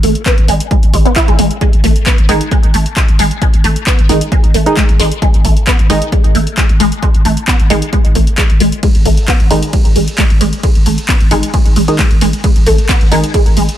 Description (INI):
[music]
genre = driving peak-time techno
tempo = 133 BPM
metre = 4/4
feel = straight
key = G# phrygian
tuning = A4 = 439 Hz
[part]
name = resonant blip pluck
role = riff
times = 0.0-13.6 s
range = G#3 to E4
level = -16 LUFS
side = right 1 dB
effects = phaser, tube saturation, ensemble chorus, sidechain pumping, ping-pong delay
[part]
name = growling 808-style bass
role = bass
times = 0.0-13.7 s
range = G#1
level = -16 LUFS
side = equal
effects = overdrive, sidechain pumping, low-pass filter
[part]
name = punchy analog drum machine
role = drums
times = 0.0-13.8 s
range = handclaps, hi-hat, ride cymbal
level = -19 LUFS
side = left 1 dB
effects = sidechain pumping on hats, sidechain pumping on cymbals
[part]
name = electronic kick drum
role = drums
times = 0.3-13.4 s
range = none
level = -11 LUFS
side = equal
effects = none
[part]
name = filtered dub chord stab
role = stabs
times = 2.3-13.2 s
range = D#3 to D#4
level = -17 LUFS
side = right 1 dB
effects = chorus, sidechain pumping, tape echo
[sound]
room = light reverb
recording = none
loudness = -9 LUFS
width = side -12 dB against mid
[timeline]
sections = 0.0-13.8 A section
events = none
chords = 0.0 G#5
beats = 0.26 0.71 1.16 | 1.61 2.06 2.51 2.96 | 3.42 3.87 4.32 4.77 | 5.22 5.67 6.12 6.57 | 7.03 7.48 7.93 8.38 | 8.83 9.28 9.73 10.18 | 10.63 11.09 11.54 11.99 | 12.44 12.89 13.34